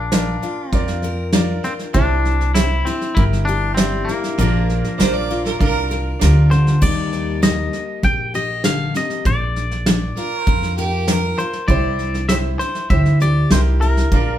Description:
honky-tonk and classic country; 99 BPM; 4/4; straight; Bb major; A4 = 440 Hz
twangy electric guitar; melody; 0.0-14.4 s; Bb3 to G5; -24 LUFS; left 2 dB
picked steel-string acoustic guitar; accompaniment; 0.0-14.4 s; G2 to Bb4; -25 LUFS; left 4 dB
upright bass; bass; 0.0-14.4 s; G1 to F2; -19 LUFS; equal
bright baby grand piano; accompaniment; 0.1-6.7, 11.7-14.4 s; D4 to D5; -26 LUFS; right 4 dB
soft brush drum kit; drums; 0.1-14.3 s; crash cymbal, hi-hat, kick drum, snare drum; -20 LUFS; right 1 dB
clear fiddle; second line; 5.0-5.9, 10.2-11.4 s; G4 to D5; -23 LUFS; right 4 dB
wet studio reverb, RT60 0.8 s; band playing live in one room; -15 LUFS; side -11 dB against mid
0.0-6.8 A section; 6.8-14.4 A section
0.0 Bb; 1.9 C; 4.4 Bb; 6.8 Eb; 9.2 Bb; 11.7 C
0.12 0.73 1.34 | 1.95 2.56 3.17 3.77 | 4.38 4.99 5.60 6.21 | 6.82 7.42 8.03 8.64 | 9.25 9.86 10.47 11.07 | 11.68 12.29 12.90 13.51 | 14.12

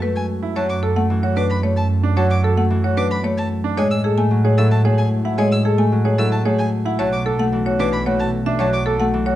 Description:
classical, minimalist pattern music; 112 BPM; 3/4; straight; A4 = 440 Hz
marimba with hard mallets; melody; 0.0-9.4 s; G#4 to G#5; -23 LUFS; left 3 dB
Celtic harp; accompaniment; 0.0-9.4 s; E3 to A3; -22 LUFS; left 1 dB
rich studio double bass section; bass; 0.0-9.4 s; B1 to A2; -20 LUFS; right 1 dB
rich violin; arpeggios; 0.2-8.8 s; G#5 to E6; -29 LUFS; left 1 dB
bright grand piano; arpeggios; 0.4-9.4 s; D4 to A4; -26 LUFS; right 6 dB
moderate large studio reverb, RT60 1.2 s; dark, warm production; -16 LUFS; side -13 dB against mid
0.0-9.4 A section
0.0 F#m9; 0.6 Dadd9/F#; 3.8 Amaj7; 7.0 Bm9
0.03 | 0.56 1.10 1.63 | 2.17 2.71 3.24 | 3.78 4.31 4.85 | 5.38 5.92 6.46 | 6.99 7.53 8.06 | 8.60 9.13

